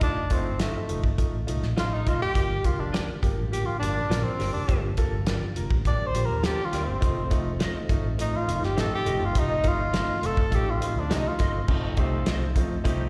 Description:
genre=uptempo 1960s-style soul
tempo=103 BPM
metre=4/4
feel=straight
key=unclear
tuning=A4 = 440 Hz
part: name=breathy tenor saxophone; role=melody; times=0.0-11.7 s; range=A3 to D5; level=-31 LUFS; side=equal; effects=slapback echo
part: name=warm upright piano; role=accompaniment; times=0.0-13.0 s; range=A3 to Bb4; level=-36 LUFS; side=equal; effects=slapback echo
part: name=vintage muted fingered electric bass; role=bass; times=0.0-13.1 s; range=F1 to F2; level=-31 LUFS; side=equal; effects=none
part: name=cloth-damped thuddy drum kit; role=drums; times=0.0-13.0 s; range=crash cymbal, hi-hat, kick drum, snare drum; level=-29 LUFS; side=equal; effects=none
part: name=electric guitar through a small old amp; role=stabs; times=0.6-12.4 s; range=F4 to Eb5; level=-40 LUFS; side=equal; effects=ensemble chorus, slapback echo
part: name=percussive tonewheel organ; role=sustained chords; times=2.3-13.1 s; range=D3 to C4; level=-38 LUFS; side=equal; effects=fast rotary speaker, chorus vibrato
part: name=clear horn section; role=second line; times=12.0-13.1 s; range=C4 to C5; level=-39 LUFS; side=equal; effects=none
room=light reverb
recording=live gig heard through the venue's PA, recital hall reverb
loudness=-26 LUFS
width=mono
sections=0.0-11.7 A section; 11.7-13.1 B section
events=tenor saxophone solo 0.0-11.7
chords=0.0 F7; 2.4 Gm7; 7.0 F7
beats=| 0.01 0.60 1.18 1.77 | 2.35 2.94 3.52 4.11 | 4.69 5.27 5.86 6.44 | 7.02 7.61 8.19 8.77 | 9.36 9.94 10.52 11.11 | 11.69 12.27 12.85

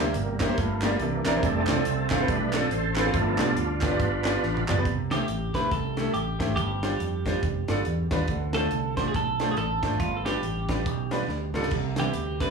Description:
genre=uptempo gospel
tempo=140 BPM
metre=4/4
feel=swing 60% on 8ths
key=C major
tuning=A4 = 443 Hz
part: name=bright grand piano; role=accompaniment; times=0.0-12.5 s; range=G2 to F5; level=-29 LUFS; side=left 2 dB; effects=plate reverb, slapback echo
part: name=overdriven tonewheel organ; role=sustained chords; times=0.0-4.6 s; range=E3 to C5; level=-28 LUFS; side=right 3 dB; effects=slow rotary speaker, chorus vibrato, plate reverb
part: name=fingered electric bass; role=bass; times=0.0-12.5 s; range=F1 to F2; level=-30 LUFS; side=right 2 dB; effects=none
part: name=crisp fusion drum kit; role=drums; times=0.1-12.5 s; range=crash cymbal, hi-hat, kick drum, snare drum, toms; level=-30 LUFS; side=right 1 dB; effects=none
part: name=group handclap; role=percussion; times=0.4-4.8 s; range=none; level=-35 LUFS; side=right 5 dB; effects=none
part: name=twelve-string electric guitar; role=melody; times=5.1-12.5 s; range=F4 to C5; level=-30 LUFS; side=right 3 dB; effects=plate reverb, slapback echo
room=light reverb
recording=live gig heard through the venue's PA, club reverb, studio ambience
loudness=-24 LUFS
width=side -5 dB against mid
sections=0.0-4.9 A section; 4.9-12.5 B section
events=tonewheel organ solo 0.0-4.9; drum fill 4.4-4.9, 11.3-11.7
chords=0.0 C7; 0.6 Gm7; 1.0 C9; 1.4 F6; 3.1 G7; 4.9 C6; 6.6 G7sus4; 8.3 Dm7; 10.0 G7; 11.7 Cmaj7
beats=0.15 0.57 1.00 | 1.43 1.86 2.28 2.71 | 3.14 3.57 3.99 4.42 | 4.85 5.28 5.71 6.14 | 6.57 6.99 7.42 7.85 | 8.28 8.71 9.14 9.57 | 10.00 10.43 10.86 11.28 | 11.71 12.14

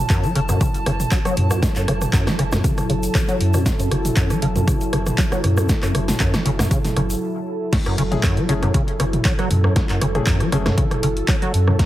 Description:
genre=acid house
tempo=118 BPM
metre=4/4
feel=swing 53% on 16ths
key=unclear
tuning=A4 = 440 Hz
part: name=warm analog pad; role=sustained chords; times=0.0-11.9 s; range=F#3 to A4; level=-27 LUFS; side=right 1 dB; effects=chorus, sidechain pumping
part: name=warm sub bass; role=bass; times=0.0-11.7 s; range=F#1 to F#2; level=-22 LUFS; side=equal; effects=sidechain pumping
part: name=warbly tape-like pad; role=texture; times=0.0-7.2 s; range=A5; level=-33 LUFS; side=right 2 dB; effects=chorus, built-in reverb, phaser, sidechain pumping
part: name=deep acid bass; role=riff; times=0.1-11.8 s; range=F#2 to F#3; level=-22 LUFS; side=equal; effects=ensemble chorus, digital delay
part: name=electronic kick drum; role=drums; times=0.1-11.9 s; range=none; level=-20 LUFS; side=equal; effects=overdrive
part: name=punchy analog drum machine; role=drums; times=0.1-11.9 s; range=crash cymbal, handclaps, hi-hat, rim click, snare drum, toms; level=-24 LUFS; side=equal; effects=overdrive
part: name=egg shaker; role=percussion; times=0.1-7.2 s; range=none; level=-34 LUFS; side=left 2 dB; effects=none
part: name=warm baby grand piano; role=stabs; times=8.1-10.7 s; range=A3 to G#4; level=-29 LUFS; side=left 5 dB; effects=digital delay
room=light reverb, digital ambience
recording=heavily compressed radio sound, multiband compression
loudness=-17 LUFS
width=side -14 dB against mid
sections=0.0-7.7 A section; 7.7-11.9 B section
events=break 7.2-7.7; drop 7.7-11.9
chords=0.0 F#m7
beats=0.10 0.61 1.12 | 1.62 2.13 2.64 3.15 | 3.66 4.17 4.68 5.18 | 5.69 6.20 6.71 7.22 | 7.73 8.23 8.74 9.25 | 9.76 10.27 10.78 11.29 | 11.79

